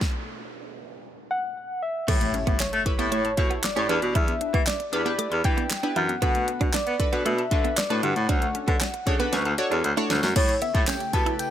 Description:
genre	dance-pop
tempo	116 BPM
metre	4/4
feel	straight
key	unclear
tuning	A4 = 440 Hz
part	pop drum kit	drums	0.0-11.5 s	crash cymbal, handclaps, hi-hat, kick drum, snare drum	-25 LUFS	equal	none
part	noise sweep and impact	sound effects	0.0-4.2 s	none	-38 LUFS	equal	none
part	soft struck synth lead	melody	1.3-11.5 s	C#5 to A5	-29 LUFS	left 2 dB	chorus, ping-pong delay
part	chorused retro synth keys	accompaniment	2.1-11.5 s	D4 to E5	-31 LUFS	equal	sidechain pumping
part	hollow square pluck	arpeggios	2.1-10.3 s	D3 to G6	-35 LUFS	left 5 dB	chorus, sidechain pumping, ping-pong delay
part	direct-recorded clean electric guitar	riff	2.1-11.3 s	A3 to E4	-32 LUFS	right 6 dB	analog chorus
part	warm baritone saxophone	bass	2.1-11.3 s	D2 to B3	-26 LUFS	equal	sidechain pumping
part	soft string machine	sustained chords	10.4-11.5 s	C#3 to G4	-42 LUFS	right 1 dB	ensemble chorus, sidechain pumping
part	tambourine	percussion	10.9-11.5 s	none	-42 LUFS	left 2 dB	none
room	little or no reverb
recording	none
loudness	-22 LUFS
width	side -10 dB against mid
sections	0.0-2.1 A section; 2.1-10.4 B section; 10.4-11.5 C section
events	noise sweep 0.0-2.1; stop 0.0-2.1; impact 2.1-4.2; drum fill 9.3-10.4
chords	0.0 N.C.; 2.1 A7; 3.9 Em7; 6.2 Bm7; 8.3 Dmaj7; 10.4 A7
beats	| 0.01 0.53 1.05 1.56 | 2.08 2.60 3.12 3.63 | 4.15 4.67 5.19 5.70 | 6.22 6.74 7.25 7.77 | 8.29 8.81 9.32 9.84 | 10.36 10.88 11.39

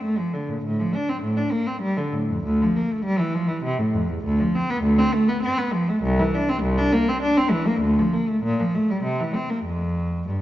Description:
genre	classical, baroque-style suite movement for unaccompanied cello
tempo	100 BPM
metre	3/4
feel	rubato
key	unclear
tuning	A4 = 435 Hz
part	rich cello	solo	0.0-10.4 s	C2 to D4	-20 LUFS	equal	none
room	moderate concert hall reverb, RT60 1.8 s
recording	dark, warm production, nothing above 7.5 kHz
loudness	-20 LUFS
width	side -14 dB against mid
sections	0.0-10.4 A section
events	none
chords	none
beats	0.03 | 0.63 1.24 1.83 | 2.44 3.04 3.63 | 4.23 4.83 5.42 | 6.03 6.63 7.22 | 7.82 8.42 9.02 | 9.64 10.27

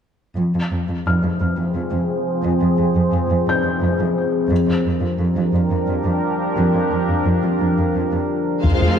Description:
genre	cinematic, hybrid orchestral and electronic film score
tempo	58 BPM (dotted quarters)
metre	6/8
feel	straight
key	F dorian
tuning	A4 = 439 Hz
part	deep dark ambient pad	sustained chords	1.3-9.0 s	F3 to C5	-20 LUFS	left 1 dB	chorus, built-in reverb, low-pass filter
part	warm studio cello section	bass	0.4-9.0 s	F2	-20 LUFS	right 1 dB	none
part	felt-muted upright piano	texture	1.1-8.7 s	F6 to G6	-28 LUFS	left 2 dB	digital delay
part	warm symphonic violin section	second line	8.6-9.0 s	C5 to F5	-23 LUFS	left 4 dB	none
part	dark symphonic viola section	accompaniment	8.6-9.0 s	Ab3 to F4	-21 LUFS	right 1 dB	low-pass filter
part	plucky analog bass	riff	8.6-8.9 s	F2	-17 LUFS	left 2 dB	low-pass filter
part	taiko ensemble	drums	8.6-9.0 s	none	-23 LUFS	equal	none
room	wet scoring stage reverb, RT60 1.5 s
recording	dark, warm production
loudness	-17 LUFS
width	side -8 dB against mid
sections	0.4-8.6 A section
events	filter sweep 0.4-8.6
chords	0.4 Fm; 4.5 Bb6/F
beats	| 0.37 1.40 | 2.44 3.47 | 4.50 5.54 | 6.57 7.61 | 8.64

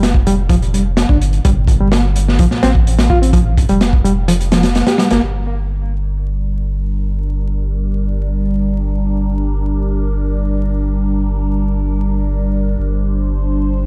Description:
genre	breakbeat, breaks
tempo	127 BPM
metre	4/4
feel	straight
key	G minor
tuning	A4 = 440 Hz
part	reed electric piano	riff	0.0-5.2 s	F3 to G4	-20 LUFS	equal	overdrive, fast tremolo, digital delay
part	saturated sub bass	bass	0.0-13.9 s	F1 to A1	-19 LUFS	equal	none
part	crunchy breakbeat drum kit	drums	0.0-5.2 s	hi-hat, kick drum, snare drum	-16 LUFS	equal	none
part	phased analog pad	sustained chords	6.3-13.9 s	G3 to C5	-24 LUFS	equal	phaser, chorus, sidechain pumping
room	light reverb, studio ambience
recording	dark, warm production, vinyl crackle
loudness	-16 LUFS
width	mono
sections	0.0-5.2 A section; 5.2-13.9 B section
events	kick drops out 4.3-5.2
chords	0.0 N.C.; 5.2 Gm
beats	0.03 0.50 0.97 | 1.45 1.92 2.39 2.86 | 3.34 3.81 4.28 4.75 | 5.23 5.70 6.17 6.64 | 7.12 7.59 8.06 8.53 | 9.01 9.48 9.95 10.42 | 10.89 11.37 11.84 12.31 | 12.79 13.26 13.73

